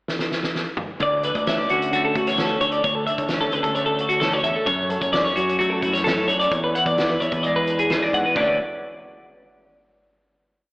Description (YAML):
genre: math rock and midwest emo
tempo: 131 BPM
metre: 4/4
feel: straight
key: D lydian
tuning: A4 = 440 Hz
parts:
  - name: loose indie drum kit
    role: drums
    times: 0.1-8.5 s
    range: china cymbal, hi-hat, kick drum, snare drum, toms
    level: -28 LUFS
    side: equal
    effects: none
  - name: twelve-string electric guitar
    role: accompaniment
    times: 1.0-8.6 s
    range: D2 to A4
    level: -27 LUFS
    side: equal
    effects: slapback echo
  - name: twelve-string electric guitar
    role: arpeggios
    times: 1.0-8.6 s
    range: F#4 to F#5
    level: -20 LUFS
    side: equal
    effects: slapback echo
  - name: growling fingered electric bass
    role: bass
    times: 1.0-8.6 s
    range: D2 to F#3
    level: -30 LUFS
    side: equal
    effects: overdrive
room: wet lush hall reverb, RT60 2.2 s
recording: big arena sound, AM radio sound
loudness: -19 LUFS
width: side -28 dB against mid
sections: 0.0-1.0 pickup bar; 1.0-8.4 A section; 8.4-10.2 final chord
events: drum fill 0.1-1.0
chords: 0.0 N.C.; 1.0 Dmaj9; 4.7 F#m7; 6.5 E9; 8.4 D5